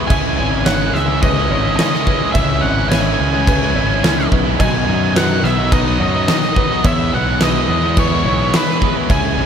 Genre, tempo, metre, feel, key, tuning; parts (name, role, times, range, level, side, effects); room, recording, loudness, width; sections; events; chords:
post-rock; 107 BPM; 4/4; straight; A4 = 440 Hz
felt-muted upright piano; arpeggios; 0.0-9.5 s; B4 to E5; -27 LUFS; right 4 dB; tape echo
twangy electric guitar; arpeggios; 0.0-9.5 s; E2 to F#4; -28 LUFS; left 1 dB
distorted electric guitar; riff; 0.0-9.5 s; B2 to E4; -22 LUFS; right 12 dB; overdrive, slapback echo
sludgy distorted guitar; riff; 0.0-9.5 s; B2 to E4; -22 LUFS; left 10 dB; overdrive
octave-fuzz lead guitar; melody; 0.1-9.5 s; B4 to G#5; -20 LUFS; equal; distortion, tape echo
fuzz fingered electric bass; bass; 0.1-9.5 s; G#1 to F#2; -19 LUFS; equal; overdrive
huge arena drum kit; drums; 0.1-9.2 s; crash cymbal, kick drum, snare drum; -18 LUFS; equal
light reverb, small room ambience; -13 LUFS; side -8 dB against mid
0.0-9.5 A section
0.1 C#m; 4.6 B; 6.8 Eadd9